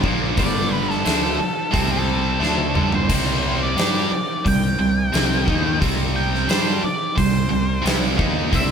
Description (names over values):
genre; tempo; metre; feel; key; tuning
blues rock power trio and southern rock; 88 BPM; 4/4; straight; unclear; A4 = 440 Hz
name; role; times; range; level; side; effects
percussive tonewheel organ; sustained chords; 0.0-8.7 s; C4 to G5; -35 LUFS; right 4 dB; none
cranked stack guitar; riff; 0.0-8.7 s; G2 to G4; -21 LUFS; right 1 dB; overdrive
fuzz fingered electric bass; bass; 0.0-8.7 s; G1 to G2; -25 LUFS; equal; overdrive
huge arena drum kit; drums; 0.0-8.7 s; crash cymbal, hi-hat, kick drum, snare drum, toms; -22 LUFS; equal; none
octave-fuzz lead guitar; melody; 0.4-8.7 s; A4 to G5; -25 LUFS; equal; distortion
room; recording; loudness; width
light reverb; band playing live in one room; -17 LUFS; side -7 dB against mid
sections
0.0-8.7 A section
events
drum fill 2.4-3.1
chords
0.0 G7; 1.7 C5; 2.4 G7; 3.1 C5